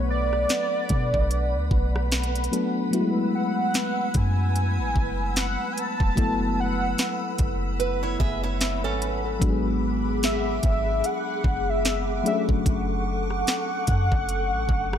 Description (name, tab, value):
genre	contemporary R&B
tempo	74 BPM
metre	4/4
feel	swing 58% on 16ths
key	F# minor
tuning	A4 = 439 Hz
part	warm velvety synth lead	melody	0.0-15.0 s	D5 to A5	-28 LUFS	right 1 dB	chorus, ping-pong delay
part	mellow FM electric piano	accompaniment	0.0-15.0 s	F#3 to E5	-29 LUFS	left 3 dB	chorus
part	glassy FM pad	sustained chords	0.0-15.0 s	G#4 to E6	-31 LUFS	equal	ensemble chorus, built-in reverb
part	clean 808-style bass	bass	0.0-15.0 s	E1 to B2	-26 LUFS	equal	none
part	trap drum kit	drums	0.3-15.0 s	hi-hat, kick drum, rim click, snare drum	-26 LUFS	equal	none
part	picked acoustic archtop guitar	arpeggios	7.8-9.4 s	C#4 to E5	-29 LUFS	right 8 dB	ping-pong delay
room	moderate plate reverb, RT60 2.4 s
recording	dreamy mix soaked in reverb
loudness	-22 LUFS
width	side -9 dB against mid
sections	0.0-15.0 A section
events	kick muted 2.9-3.7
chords	0.0 Bm7; 2.9 F#m11; 9.4 G#m7b5; 12.3 Dmaj7/F#